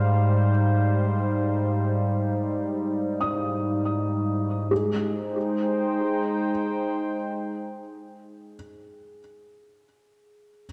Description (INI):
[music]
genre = ambient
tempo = free time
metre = none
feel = none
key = Ab major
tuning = A4 = 440 Hz
[part]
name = warm analog pad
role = sustained chords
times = 0.0-8.9 s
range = Ab2 to G5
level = -26 LUFS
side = equal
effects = chorus
[part]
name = felt-muted upright piano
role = arpeggios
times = 0.0-10.7 s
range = Ab4 to Eb6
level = -33 LUFS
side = equal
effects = delay
[sound]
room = wet concert hall reverb, RT60 2.1 s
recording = dark, warm production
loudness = -25 LUFS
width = mono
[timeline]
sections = 0.0-4.7 A section; 4.7-8.1 B section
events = none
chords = 0.0 Abmaj7